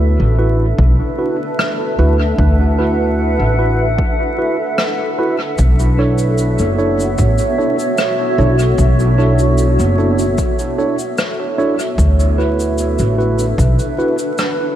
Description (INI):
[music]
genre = ambient dub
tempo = 75 BPM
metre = 4/4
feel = straight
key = unclear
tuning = A4 = 440 Hz
[part]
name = granular cloud pad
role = sustained chords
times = 0.0-14.8 s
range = B3 to F#5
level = -19 LUFS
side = equal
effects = built-in reverb
[part]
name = mellow tine electric piano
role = stabs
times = 0.0-14.2 s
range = D4 to C#5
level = -20 LUFS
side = right 3 dB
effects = dub echo
[part]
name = upright bass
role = bass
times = 0.0-13.8 s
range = F#1 to D2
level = -14 LUFS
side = equal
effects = tube saturation
[part]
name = electronic kick drum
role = drums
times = 0.8-13.8 s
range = none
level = -19 LUFS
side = equal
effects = none
[part]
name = rim click and cabasa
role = drums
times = 1.6-14.6 s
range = none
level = -24 LUFS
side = equal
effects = dub echo
[sound]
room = light reverb, small room reverb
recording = vinyl crackle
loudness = -13 LUFS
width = side -11 dB against mid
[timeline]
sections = 0.0-14.8 A section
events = none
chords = 0.0 D69; 5.6 Bm11; 12.0 D69